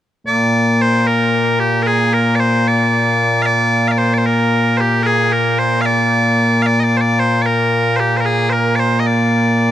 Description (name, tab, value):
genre	scottish traditional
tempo	75 BPM (dotted quarters)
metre	6/8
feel	straight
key	Bb mixolydian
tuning	A4 = 440 Hz
part	loud bright bagpipes	melody	0.3-9.7 s	Bb2 to F5	-12 LUFS	equal	none
room	light reverb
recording	dark, warm production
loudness	-12 LUFS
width	side -12 dB against mid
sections	0.3-9.7 A section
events	none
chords	none